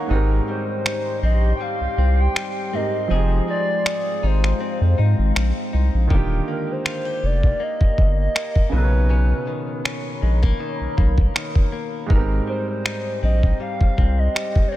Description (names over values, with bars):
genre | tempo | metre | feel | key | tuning
contemporary R&B | 80 BPM | 4/4 | swing 54% on 16ths | unclear | A4 = 441 Hz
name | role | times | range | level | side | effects
warm grand piano | accompaniment | 0.0-14.8 s | Ab2 to A#5 | -29 LUFS | right 6 dB | none
deep dark ambient pad | sustained chords | 0.0-14.8 s | Ab3 to D6 | -31 LUFS | equal | chorus, built-in reverb
direct-recorded clean electric guitar | arpeggios | 0.0-14.8 s | Ab2 to Ab4 | -30 LUFS | left 7 dB | lush chorus, digital delay
saturated sub bass | bass | 0.1-14.3 s | Eb1 to Ab2 | -18 LUFS | equal | none
hollow clarinet-like synth lead | melody | 0.5-14.8 s | Bb4 to G5 | -26 LUFS | equal | chorus, digital delay
dusty soul sampler-style drum kit | drums | 0.9-14.7 s | finger snaps, kick drum | -19 LUFS | equal | none
room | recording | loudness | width
little or no reverb | none | -18 LUFS | side -14 dB against mid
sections
0.0-14.8 A section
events
break 0.0-6.1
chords
0.1 Abmaj7; 3.1 Fm7; 6.1 Ebmaj7; 8.7 Bmaj9; 12.1 Abmaj7